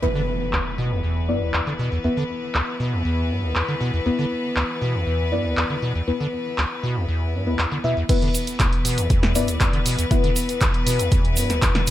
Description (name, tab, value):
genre	acid house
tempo	119 BPM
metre	4/4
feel	straight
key	unclear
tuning	A4 = 439 Hz
part	bright chamber string section	sustained chords	0.0-11.9 s	E3 to B4	-28 LUFS	left 2 dB	sidechain pumping, low-pass filter
part	acid bass, square	riff	0.0-11.9 s	D2 to D3	-24 LUFS	equal	overdrive, lush chorus, digital delay
part	deep mellow chord stab	stabs	0.0-10.2 s	B3 to E5	-26 LUFS	left 2 dB	chorus, digital delay
part	impact	sound effects	0.0-2.0 s	none	-30 LUFS	equal	none
part	punchy analog drum machine	drums	0.5-11.9 s	crash cymbal, handclaps, hi-hat, snare drum	-25 LUFS	equal	low-pass filter on hats, low-pass filter on snare, low-pass filter on cymbals
part	electronic kick drum	drums	8.1-11.7 s	none	-20 LUFS	equal	none
part	cabasa	percussion	8.1-11.9 s	none	-30 LUFS	right 5 dB	none
room	light reverb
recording	none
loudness	-20 LUFS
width	side -13 dB against mid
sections	0.0-8.1 A section; 8.1-11.9 B section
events	impact 0.0-2.0; drop 8.1-11.9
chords	0.0 E5